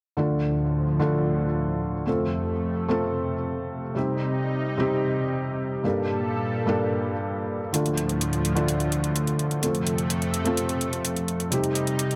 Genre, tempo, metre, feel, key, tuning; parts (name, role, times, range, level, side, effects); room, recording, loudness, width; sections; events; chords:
EDM, festival progressive house; 127 BPM; 4/4; straight; A4 = 442 Hz
felt-muted upright piano; accompaniment; 0.2-12.2 s; G2 to A4; -28 LUFS; equal; delay
lush unison pad; sustained chords; 0.2-12.2 s; D2 to A4; -30 LUFS; equal; chorus
electronic hi-hat; drums; 7.7-12.2 s; -32 LUFS; equal
moderate lush hall reverb, RT60 1.9 s; -26 LUFS; mono
0.2-12.2 A section
0.2 Dm; 2.1 F; 4.0 Cm; 5.8 Gmadd9; 7.7 Dm; 9.6 F; 11.5 Cm